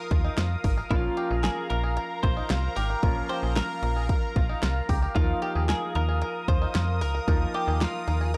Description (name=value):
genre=synth-pop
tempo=113 BPM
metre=4/4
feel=straight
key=unclear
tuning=A4 = 441 Hz
part: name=clear concert grand piano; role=accompaniment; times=0.0-8.4 s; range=F3 to F4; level=-38 LUFS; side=equal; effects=none
part: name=sweeping resonant pad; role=sustained chords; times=0.0-8.4 s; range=Bb4 to Eb6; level=-36 LUFS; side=equal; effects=chorus
part: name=bluegrass banjo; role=arpeggios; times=0.0-8.4 s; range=Eb4 to Bb4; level=-39 LUFS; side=equal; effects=analog delay
part: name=slap-like FM bass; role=bass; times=0.1-8.4 s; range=Ab1 to F2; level=-29 LUFS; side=equal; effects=none
part: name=pop drum kit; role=drums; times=0.1-8.4 s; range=handclaps, hi-hat, kick drum, snare drum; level=-29 LUFS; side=equal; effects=none
part: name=twelve-string electric guitar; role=melody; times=0.9-8.3 s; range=F4 to C5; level=-36 LUFS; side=equal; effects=subtle chorus
room=digital ambience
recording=dry, gritty hardware recording, cassette tape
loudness=-26 LUFS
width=mono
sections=0.0-8.4 A section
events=none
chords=0.0 Ebsus2; 0.9 Bbm; 5.2 Ebsus2